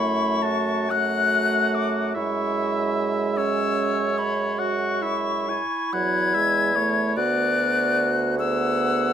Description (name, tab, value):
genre	classical, slow romantic movement for wind quintet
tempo	40-50 BPM (dotted quarters)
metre	12/8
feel	rubato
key	unclear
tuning	A4 = 440 Hz
part	hollow concert flute	melody	0.0-9.1 s	B5 to G#6	-25 LUFS	left 7 dB	none
part	warm oboe	second line	0.0-9.1 s	C#5 to B5	-28 LUFS	left 1 dB	none
part	mellow French horn	accompaniment	0.0-9.1 s	F#3 to B3	-27 LUFS	right 3 dB	none
part	warm clarinet	accompaniment	0.0-9.1 s	C#4 to G#4	-29 LUFS	right 6 dB	none
part	mellow bassoon	bass	0.0-9.1 s	D2 to F#2	-28 LUFS	right 1 dB	none
room	light reverb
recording	none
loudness	-20 LUFS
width	side -8 dB against mid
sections	0.0-9.1 A section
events	none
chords	0.0 F#m; 2.2 C#m/F#; 7.1 Bm/D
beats	0.91 | 2.15 3.36 4.58 5.93 | 7.15 8.37